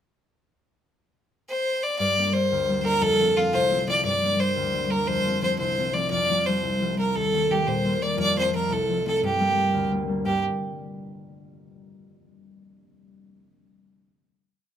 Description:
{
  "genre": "celtic folk, Celtic jig",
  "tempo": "116 BPM (dotted quarters)",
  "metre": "6/8",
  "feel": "straight",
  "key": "G minor",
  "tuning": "A4 = 440 Hz",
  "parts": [
    { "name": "bright fiddle", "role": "melody", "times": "1.5-10.4 s", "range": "F4 to D5", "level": "-23 LUFS", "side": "equal", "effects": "plate reverb" },
    { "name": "concert harp", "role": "accompaniment", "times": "2.0-12.1 s", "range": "C2 to D4", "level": "-26 LUFS", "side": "left 1 dB", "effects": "none" }
  ],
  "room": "moderate small room reverb, RT60 0.5 s",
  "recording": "none",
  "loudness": "-21 LUFS",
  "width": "side -9 dB against mid",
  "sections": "1.0-2.0 pickup bar; 2.0-10.3 A section; 10.3-11.3 final chord",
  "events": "none",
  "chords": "1.0 N.C.; 2.0 Gm; 3.0 F; 4.0 Gm; 5.1 F; 6.1 Fadd9; 7.1 Eb; 8.2 F; 9.2 Gmadd9"
}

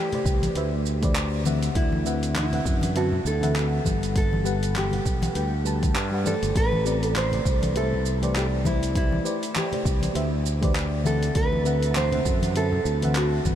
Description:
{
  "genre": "sunset chillout",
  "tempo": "100 BPM",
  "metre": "4/4",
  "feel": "swing 57% on 16ths",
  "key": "A dorian",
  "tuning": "A4 = 439 Hz",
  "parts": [
    { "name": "nylon-string guitar", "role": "melody", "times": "0.0-13.6 s", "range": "E4 to C5", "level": "-28 LUFS", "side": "right 1 dB", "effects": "diffuse ambient delay" },
    { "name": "mellow FM electric piano", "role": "accompaniment", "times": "0.0-13.6 s", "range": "D3 to A5", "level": "-29 LUFS", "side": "moving between left 6 dB and right 3 dB", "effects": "chorus, auto-pan, ping-pong delay" },
    { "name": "deep house drum kit", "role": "drums", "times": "0.1-13.6 s", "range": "handclaps, hi-hat, shaker", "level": "-32 LUFS", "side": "right 1 dB", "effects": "none" },
    { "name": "congas", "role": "percussion", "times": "0.1-13.6 s", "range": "none", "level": "-33 LUFS", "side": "left 2 dB", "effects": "none" },
    { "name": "fingered electric bass", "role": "bass", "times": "0.3-13.6 s", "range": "G1 to G2", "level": "-26 LUFS", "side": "equal", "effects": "none" },
    { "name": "electronic kick drum", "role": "drums", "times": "0.3-13.6 s", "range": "none", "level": "-25 LUFS", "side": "equal", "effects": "none" }
  ],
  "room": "moderate huge ambient reverb, RT60 7.5 s",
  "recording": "dreamy mix soaked in reverb",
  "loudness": "-21 LUFS",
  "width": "side -10 dB against mid",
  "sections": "0.0-13.6 A section",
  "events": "none",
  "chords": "0.0 Am11; 1.8 D13; 4.2 Gmaj7; 6.6 Am11; 11.4 D13"
}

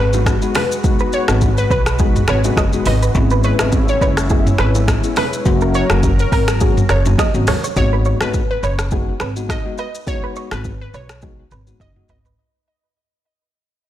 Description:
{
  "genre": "afrobeats",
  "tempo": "104 BPM",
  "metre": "4/4",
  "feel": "swing 55% on 16ths",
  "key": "G# minor",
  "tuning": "A4 = 440 Hz",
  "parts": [
    { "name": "glassy wavetable pluck", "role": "melody", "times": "0.0-12.2 s", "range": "A#4 to D#5", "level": "-24 LUFS", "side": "left 2 dB", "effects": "chorus" },
    { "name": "lush unison pad", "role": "sustained chords", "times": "0.0-7.7 s", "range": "F#3 to B4", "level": "-26 LUFS", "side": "equal", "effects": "chorus" },
    { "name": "direct-recorded clean electric guitar", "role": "riff", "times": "0.0-12.3 s", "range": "G#4 to D#5", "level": "-26 LUFS", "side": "right 6 dB", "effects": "lush chorus" },
    { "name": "upright bass", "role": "bass", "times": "0.0-12.3 s", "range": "F#1 to D#2", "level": "-18 LUFS", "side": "equal", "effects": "none" },
    { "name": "bell-like tine electric piano", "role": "accompaniment", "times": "0.1-12.2 s", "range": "F#3 to F#4", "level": "-24 LUFS", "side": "left 6 dB", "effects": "none" },
    { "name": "afro-pop drum kit", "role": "drums", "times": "0.1-12.4 s", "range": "finger snaps, hi-hat, kick drum, rim click, shaker, toms", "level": "-18 LUFS", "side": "equal", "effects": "soft clipping on snare" },
    { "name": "bongos and congas", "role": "percussion", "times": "0.1-7.6 s", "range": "none", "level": "-29 LUFS", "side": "right 4 dB", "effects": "none" }
  ],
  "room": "little or no reverb",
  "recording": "blown-out, overdriven recording, overdrive",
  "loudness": "-14 LUFS",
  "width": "side -12 dB against mid",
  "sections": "0.0-7.8 A section; 7.8-12.4 B section",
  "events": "fade-out 7.8-12.4; drum fill 11.2-12.4",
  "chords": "0.0 G#m7; 3.1 E6; 5.5 F#; 7.8 G#m7"
}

